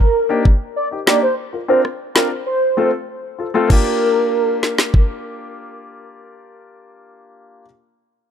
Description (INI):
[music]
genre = dancehall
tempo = 97 BPM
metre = 4/4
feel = straight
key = G minor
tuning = A4 = 439 Hz
[part]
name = warm velvety synth lead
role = melody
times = 0.0-5.5 s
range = Bb4 to D5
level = -18 LUFS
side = right 2 dB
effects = chorus, ping-pong delay
[part]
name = warm baby grand piano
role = accompaniment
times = 0.3-7.6 s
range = A3 to Bb4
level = -21 LUFS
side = left 4 dB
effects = none
[part]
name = island pop drum kit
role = drums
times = 0.5-5.1 s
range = crash cymbal, kick drum, rim click, snare drum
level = -15 LUFS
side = equal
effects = none
[sound]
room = little or no reverb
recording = none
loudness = -15 LUFS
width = side -8 dB against mid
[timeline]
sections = 0.0-3.7 A section; 3.7-6.2 B section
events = break 3.1-3.7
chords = 0.0 Ebmaj7; 1.2 Bbadd9; 2.5 F; 3.7 Gm7